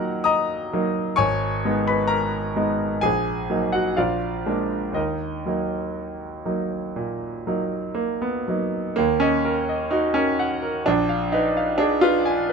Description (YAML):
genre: classical, romantic character piece for solo piano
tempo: 59-66 BPM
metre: 4/4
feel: rubato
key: Eb minor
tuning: A4 = 440 Hz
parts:
  - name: bright concert grand piano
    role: solo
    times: 0.0-12.5 s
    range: Ab1 to Eb6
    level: -21 LUFS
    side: equal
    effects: none
room: little or no reverb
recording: close, detailed microphones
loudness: -21 LUFS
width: side -5 dB against mid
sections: 0.0-9.0 A section; 9.0-12.5 B section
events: none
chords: 0.0 Ebm; 1.2 Abm; 3.0 Ebm/Bb; 4.0 Bb7; 5.0 Ebm; 10.9 Bb5